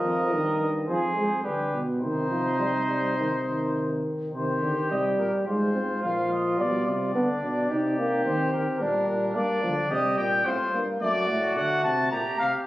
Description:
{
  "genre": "classical, imitative canzona for brass ensemble",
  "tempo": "108 BPM",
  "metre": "4/4",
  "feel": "straight",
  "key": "C minor",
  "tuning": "A4 = 440 Hz",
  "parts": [
    { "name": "mellow trumpet", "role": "melody", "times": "0.0-12.5 s", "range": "Bb4 to Bb5", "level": "-29 LUFS", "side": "left 2 dB", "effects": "none" },
    { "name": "clear flugelhorn", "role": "second line", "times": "0.0-12.7 s", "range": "D4 to Bb4", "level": "-30 LUFS", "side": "right 1 dB", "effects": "none" },
    { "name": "warm euphonium", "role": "accompaniment", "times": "0.0-12.4 s", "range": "D3 to Eb4", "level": "-27 LUFS", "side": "equal", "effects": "none" },
    { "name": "warm bass trombone", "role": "bass", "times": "0.0-12.5 s", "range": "F2 to Eb3", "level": "-31 LUFS", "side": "right 1 dB", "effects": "none" }
  ],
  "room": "moderate recital hall reverb, RT60 1.6 s",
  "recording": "recorded on a phone in the room, club reverb, compression",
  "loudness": "-23 LUFS",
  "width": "side -16 dB against mid",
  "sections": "0.0-4.3 A section; 4.3-12.7 B section",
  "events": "none",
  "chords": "0.0 Eb; 0.9 Fm; 1.4 G; 2.0 Cm; 5.5 Fm/Ab; 6.6 G/B; 7.7 Cm; 8.8 Gm/Bb; 9.9 Cm; 11.0 D/F#; 12.1 Gm/Bb"
}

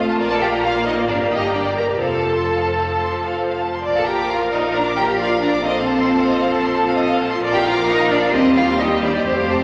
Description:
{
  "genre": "quick classical-period movement for string orchestra",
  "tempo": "133 BPM",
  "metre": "4/4",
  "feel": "straight",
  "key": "Bb major",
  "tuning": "A4 = 441 Hz",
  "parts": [
    { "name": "warm symphonic violin section", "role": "second line", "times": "0.0-9.6 s", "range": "Bb4 to D6", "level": "-24 LUFS", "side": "equal", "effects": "none" },
    { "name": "clear symphonic viola section", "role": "accompaniment", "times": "0.0-9.6 s", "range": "F3 to Bb4", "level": "-24 LUFS", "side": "equal", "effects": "none" },
    { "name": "rich symphonic double bass section", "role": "bass", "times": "0.0-9.6 s", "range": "F1 to F2", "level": "-32 LUFS", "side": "equal", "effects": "none" },
    { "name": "warm symphonic violin section", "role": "melody", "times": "0.3-9.6 s", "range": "C5 to Bb5", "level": "-27 LUFS", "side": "equal", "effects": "none" },
    { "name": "rich symphonic cello section", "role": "bass", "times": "0.3-9.6 s", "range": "C4 to Bb4", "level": "-24 LUFS", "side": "equal", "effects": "none" }
  ],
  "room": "wet scoring stage reverb, RT60 1.9 s",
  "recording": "none",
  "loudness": "-18 LUFS",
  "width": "mono",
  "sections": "0.0-9.6 A section",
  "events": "none",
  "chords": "0.2 Bb; 1.1 Gm; 2.0 F; 3.8 Bb; 5.6 F/Bb; 7.4 Bb; 8.3 Cm/Eb"
}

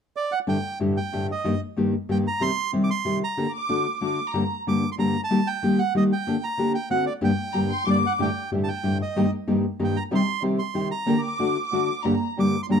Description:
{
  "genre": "tango",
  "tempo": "187 BPM",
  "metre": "3/4",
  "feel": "rubato",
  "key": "G harmonic minor",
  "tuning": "A4 = 440 Hz",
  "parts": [
    { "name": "bandoneon", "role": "melody", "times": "0.2-12.8 s", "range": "D5 to D6", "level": "-28 LUFS", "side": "right 5 dB", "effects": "plate reverb" },
    { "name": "nylon-string guitar", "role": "accompaniment", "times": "0.5-12.8 s", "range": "G2 to G4", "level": "-23 LUFS", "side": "left 2 dB", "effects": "none" },
    { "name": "warm chamber violin section", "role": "second line", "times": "3.5-4.6, 7.5-8.2, 11.2-12.3 s", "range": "Bb5 to D6", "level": "-28 LUFS", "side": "equal", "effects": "none" },
    { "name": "dark studio string section", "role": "stabs", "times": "8.2-12.8 s", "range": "G2 to G4", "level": "-31 LUFS", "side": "right 6 dB", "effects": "none" }
  ],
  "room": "moderate club reverb, RT60 0.5 s",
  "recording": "dark, warm production",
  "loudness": "-22 LUFS",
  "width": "side -7 dB against mid",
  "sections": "0.5-8.2 A section; 8.2-12.8 A section",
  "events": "none",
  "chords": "0.5 Gsus2; 1.4 Eb/G; 2.4 Cm; 3.4 Gm/D; 3.7 D; 4.3 Gm; 5.3 Eb; 6.3 Gm/D; 6.9 D7; 7.2 Gm; 8.2 Gsus2; 9.2 Eb/G; 10.1 Cm; 11.1 Gm/D; 11.4 D; 12.0 Gm"
}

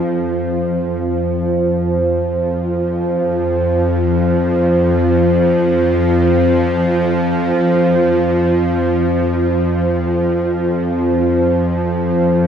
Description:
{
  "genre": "ambient",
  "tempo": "free time",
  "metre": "none",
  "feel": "none",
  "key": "unclear",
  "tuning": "A4 = 438 Hz",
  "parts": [
    { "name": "bowed-like drone", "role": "solo", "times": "0.0-12.5 s", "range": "F2 to F3", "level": "-13 LUFS", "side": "equal", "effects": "built-in reverb, analog delay" }
  ],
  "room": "wet plate reverb, RT60 2.3 s",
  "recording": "echo-heavy mix, cassette tape",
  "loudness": "-13 LUFS",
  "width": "side -8 dB against mid",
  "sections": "0.1-12.5 A section",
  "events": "none",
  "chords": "none"
}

